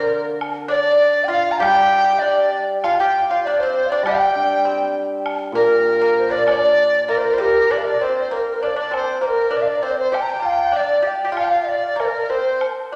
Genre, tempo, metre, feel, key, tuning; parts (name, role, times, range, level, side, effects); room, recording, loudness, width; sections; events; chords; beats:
chinese traditional, Chinese chamber ensemble; 98 BPM; 2/4; rubato; D jue mode; A4 = 439 Hz
mellow hollow xiao; melody; 0.0-13.0 s; G4 to G5; -23 LUFS; equal
pipa; second line; 0.0-13.0 s; G3 to G4; -30 LUFS; equal
reedy large dizi; second line; 0.0-13.0 s; Bb4 to Bb5; -21 LUFS; equal
hammered dulcimer; accompaniment; 0.0-7.4 s; Bb2 to G4; -28 LUFS; equal
woodblock; percussion; 0.4-12.8 s; -34 LUFS; equal
wet scoring stage reverb, RT60 1.6 s; -18 LUFS; mono
0.0-7.7 A section; 7.7-13.0 B section
| 0.40 1.00 | 1.61 2.21 | 2.83 3.44 | 4.05 4.66 | 5.26 5.87 | 6.47 7.09 | 7.70 8.32 | 8.94 9.54 | 10.15 10.75 | 11.36 11.99 | 12.61